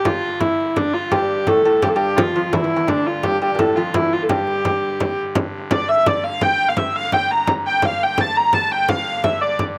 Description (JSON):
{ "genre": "medieval dance", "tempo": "170 BPM", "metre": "3/4", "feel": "straight", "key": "unclear", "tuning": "A4 = 440 Hz", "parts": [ { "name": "warm hurdy-gurdy", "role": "melody", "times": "0.0-9.6 s", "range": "D4 to Bb5", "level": "-20 LUFS", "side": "equal", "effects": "none" }, { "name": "pipe organ, trumpet", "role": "drone", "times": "0.0-9.8 s", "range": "G2 to D3", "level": "-35 LUFS", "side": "equal", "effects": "none" }, { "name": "frame drum", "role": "percussion", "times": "0.1-9.8 s", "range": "none", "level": "-25 LUFS", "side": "equal", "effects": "none" }, { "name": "lute", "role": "second line", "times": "1.1-5.1 s", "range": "D2 to Bb2", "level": "-25 LUFS", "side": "equal", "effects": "none" } ], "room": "little or no reverb", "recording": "recorded outdoors, with no room sound", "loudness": "-19 LUFS", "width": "mono", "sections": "0.0-5.4 A section; 5.4-9.8 B section", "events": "none", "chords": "none" }